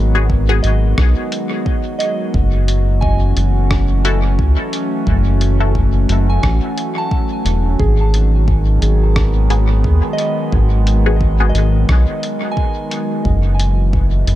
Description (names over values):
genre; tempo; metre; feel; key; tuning
ambient dub; 88 BPM; 4/4; swing 57% on 16ths; unclear; A4 = 441 Hz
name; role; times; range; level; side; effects
warbly tape-like pad; sustained chords; 0.0-14.4 s; D#3 to F#4; -21 LUFS; equal; chorus, built-in reverb
soft synth bell; arpeggios; 0.0-14.4 s; G#4 to A5; -26 LUFS; right 3 dB; chorus, dub echo
round analog bass; bass; 0.0-14.4 s; E1 to D#2; -13 LUFS; equal; none
filtered dub chord stab; stabs; 0.1-11.5 s; B3 to A4; -24 LUFS; left 4 dB; phaser, dub echo
electronic kick drum; drums; 0.3-14.1 s; none; -19 LUFS; equal; none
lo-fi sampler-style drum kit; drums; 0.6-14.4 s; hi-hat, rim click; -26 LUFS; equal; dub echo
room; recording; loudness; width
little or no reverb; echo-heavy mix; -13 LUFS; side -14 dB against mid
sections
0.0-14.4 A section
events
none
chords
0.0 G#m7; 2.3 F#m7; 7.8 G#m7; 13.3 F#m7